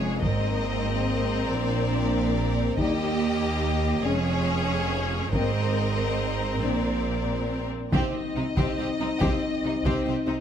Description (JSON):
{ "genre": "cinematic, epic orchestral film score", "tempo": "141 BPM", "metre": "3/4", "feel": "straight", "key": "unclear", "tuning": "A4 = 439 Hz", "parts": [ { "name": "rich symphonic violin section", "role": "melody", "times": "0.0-10.4 s", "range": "Db5 to Eb5", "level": "-34 LUFS", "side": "left 4 dB", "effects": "none" }, { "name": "clear chamber violin section", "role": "second line", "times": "0.0-10.4 s", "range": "Eb4 to Bb4", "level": "-32 LUFS", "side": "left 2 dB", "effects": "none" }, { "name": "clear symphonic viola section", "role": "accompaniment", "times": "0.0-10.3 s", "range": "Ab3 to Db4", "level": "-32 LUFS", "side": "equal", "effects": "none" }, { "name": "mellow French horn section", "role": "sustained chords", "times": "0.0-10.4 s", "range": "G3 to Eb4", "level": "-30 LUFS", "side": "left 4 dB", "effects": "none" }, { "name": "clear symphonic cello section", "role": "bass", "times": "0.0-10.4 s", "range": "Eb2 to C3", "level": "-30 LUFS", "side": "right 4 dB", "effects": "none" }, { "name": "clear symphonic double bass section", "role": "bass", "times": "0.0-10.3 s", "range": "F1 to Eb2", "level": "-30 LUFS", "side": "right 3 dB", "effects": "none" }, { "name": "solo taiko drums", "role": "drums", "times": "0.2-10.3 s", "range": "none", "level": "-28 LUFS", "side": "equal", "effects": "none" } ], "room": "moderate scoring stage reverb, RT60 1.8 s", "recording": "none", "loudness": "-23 LUFS", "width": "side -9 dB against mid", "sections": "0.0-7.9 A section; 7.9-10.4 B section", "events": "build-up 0.0-7.9", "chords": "0.2 Abadd9; 1.5 Bbadd9; 2.8 Eb; 4.0 Db/F; 5.3 Abadd9; 6.6 Bbadd9; 7.9 Cm", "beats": "| 0.23 0.65 1.07 | 1.50 1.92 2.35 | 2.77 3.20 3.62 | 4.05 4.47 4.90 | 5.33 5.76 6.19 | 6.63 7.06 7.50 | 7.93 8.36 8.79 | 9.22 9.64 10.07" }